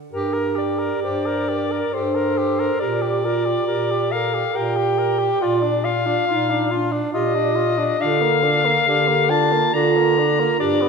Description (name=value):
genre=classical, lyrical piece for single-reed quartet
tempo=69 BPM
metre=3/4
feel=rubato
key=G minor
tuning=A4 = 442 Hz
part: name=mellow soprano saxophone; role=melody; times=0.1-10.9 s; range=Bb4 to Bb5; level=-22 LUFS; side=left 6 dB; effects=none
part: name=mellow clarinet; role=second line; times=0.1-10.9 s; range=D4 to C5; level=-23 LUFS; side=right 9 dB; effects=none
part: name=clear tenor saxophone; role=accompaniment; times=0.1-10.9 s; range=Bb3 to Bb4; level=-25 LUFS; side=left 3 dB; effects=none
part: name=mellow bass clarinet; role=bass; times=0.1-10.9 s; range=G2 to D3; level=-24 LUFS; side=right 1 dB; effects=none
room=wet scoring stage reverb, RT60 2.0 s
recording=minimal, uncompressed stereo recording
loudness=-17 LUFS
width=side -5 dB against mid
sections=0.1-10.9 A section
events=none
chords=0.1 Gm; 2.8 Gm/Bb; 5.4 Bb; 8.0 Bb/D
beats=| 0.12 1.03 1.93 | 2.81 3.69 4.56 | 5.43 6.30 7.15 | 8.01 8.88 9.74 | 10.60